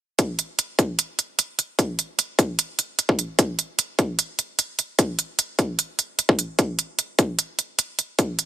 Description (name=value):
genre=dubstep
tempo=150 BPM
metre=4/4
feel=half-time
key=none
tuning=none
part: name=electronic hi-hat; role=drums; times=0.2-8.5 s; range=none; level=-21 LUFS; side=right 3 dB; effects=none
part: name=electronic kick drum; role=drums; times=0.2-8.3 s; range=none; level=-20 LUFS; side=left 1 dB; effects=high-pass filter on kick
room=little or no reverb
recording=dense, heavily limited modern master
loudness=-21 LUFS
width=side -11 dB against mid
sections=0.2-8.5 A section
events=none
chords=none